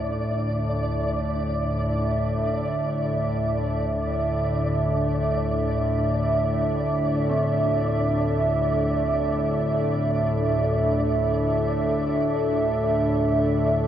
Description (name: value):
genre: dark ambient drone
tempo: free time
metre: none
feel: none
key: unclear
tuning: A4 = 438 Hz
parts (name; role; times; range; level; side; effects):
- dark analog pad; sustained chords; 0.0-13.9 s; D4 to E5; -25 LUFS; right 2 dB; chorus
- dark detuned synth bell; arpeggios; 0.0-13.9 s; none; barely audible; none; none
- analog drone; drone; 0.0-13.9 s; D2 to A2; -25 LUFS; left 1 dB; chorus
- flickering grainy texture; texture; 0.0-13.9 s; D5; -31 LUFS; equal; built-in reverb
room: wet cathedral reverb, RT60 5.3 s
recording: worn, warbling old tape, cassette tape, warbly pitch drift, nothing above 10.7 kHz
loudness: -21 LUFS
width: side -10 dB against mid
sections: 0.0-13.9 A section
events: none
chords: 0.0 Dmadd9